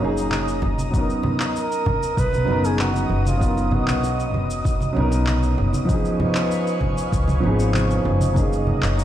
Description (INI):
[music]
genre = sunset chillout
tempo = 97 BPM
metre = 4/4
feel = straight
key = B lydian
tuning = A4 = 442 Hz
[part]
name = dark grand piano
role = accompaniment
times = 0.0-9.0 s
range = E#3 to A#4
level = -24 LUFS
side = equal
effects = auto-pan, ping-pong delay
[part]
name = airy breathy pad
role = sustained chords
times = 0.0-9.0 s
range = B3 to D#6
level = -29 LUFS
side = left 1 dB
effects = chorus, phaser
[part]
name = upright bass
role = bass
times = 0.0-9.0 s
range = F#1 to C#2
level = -22 LUFS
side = equal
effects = tube saturation
[part]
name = electronic cabasa and handclaps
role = drums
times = 0.2-9.0 s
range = none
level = -30 LUFS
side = equal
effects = overdrive
[part]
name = bongos and congas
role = percussion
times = 0.2-9.0 s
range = none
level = -28 LUFS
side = right 1 dB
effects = none
[part]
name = electronic kick drum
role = drums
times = 0.6-8.5 s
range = none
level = -23 LUFS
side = equal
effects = overdrive
[part]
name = wind-like tuned noise texture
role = texture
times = 2.9-9.0 s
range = D#5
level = -34 LUFS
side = right 4 dB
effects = built-in reverb
[part]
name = trumpet with bucket mute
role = melody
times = 1.6-4.4 s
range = E#4 to B4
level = -26 LUFS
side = right 2 dB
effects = ping-pong delay
[sound]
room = light reverb, small room ambience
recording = played on a big sound system in a bare room, stone room reverb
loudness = -18 LUFS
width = side -12 dB against mid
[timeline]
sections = 0.0-9.0 A section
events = none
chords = 0.0 F#6; 0.9 Bmaj7; 5.9 C#7; 8.4 F#6